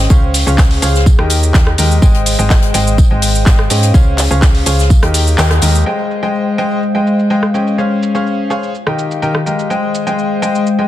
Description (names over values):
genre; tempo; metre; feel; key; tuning
piano house; 125 BPM; 4/4; straight; Ab major; A4 = 440 Hz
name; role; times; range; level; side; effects
clear grand piano; riff; 0.0-10.9 s; Eb3 to G5; -17 LUFS; left 2 dB; sidechain pumping, ping-pong delay
solid FM bass; bass; 0.0-5.8 s; Ab1 to Ab2; -13 LUFS; equal; sidechain pumping
warbly tape-like pad; texture; 0.0-10.9 s; Ab3 to G5; -19 LUFS; left 1 dB; chorus, built-in reverb, sidechain pumping
electronic kick drum; drums; 0.1-5.0 s; none; -9 LUFS; equal; none
house drum kit; drums; 0.1-10.8 s; cabasa, handclaps, hi-hat, rim click; -18 LUFS; equal; low-pass filter on hats, low-pass filter on snare, low-pass filter on perc
soft-mallet drum kit; drums; 0.1-5.7 s; hi-hat, snare drum, tambourine; -25 LUFS; left 2 dB; high-pass filter on hats, high-pass filter on snare, high-pass filter on perc, high-pass filter on room
room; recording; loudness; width
light reverb, studio reverb; dense, heavily limited modern master; -10 LUFS; side -13 dB against mid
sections
0.0-5.9 A section; 5.9-10.9 B section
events
kick drops out 5.4-5.9; band accent 5.4; filter sweep on drum 5.9-10.9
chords
0.1 Dbmaj7; 1.1 Eb; 2.0 Abmaj7; 3.9 Dbmaj7; 4.9 Eb; 5.9 Abmaj7; 7.8 Dbmaj7; 8.7 Eb; 9.7 Abmaj7